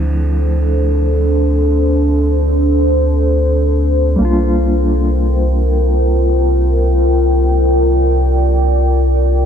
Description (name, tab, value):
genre	trip hop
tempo	free time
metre	none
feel	none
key	unclear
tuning	A4 = 435 Hz
part	mellow reed electric piano	accompaniment	0.0-9.5 s	F3 to F4	-22 LUFS	equal	tremolo, vintage 12-bit sampler grit, tape echo
part	deep dark ambient pad	sustained chords	0.0-9.5 s	D4 to G5	-16 LUFS	equal	chorus, built-in reverb
part	round analog bass	bass	0.0-9.5 s	C2 to D2	-14 LUFS	equal	none
room	light reverb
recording	none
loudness	-12 LUFS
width	side -8 dB against mid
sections	0.0-9.5 A section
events	filter sweep on ambient pad 0.0-9.5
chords	0.0 Dm7; 4.2 C7sus4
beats	free time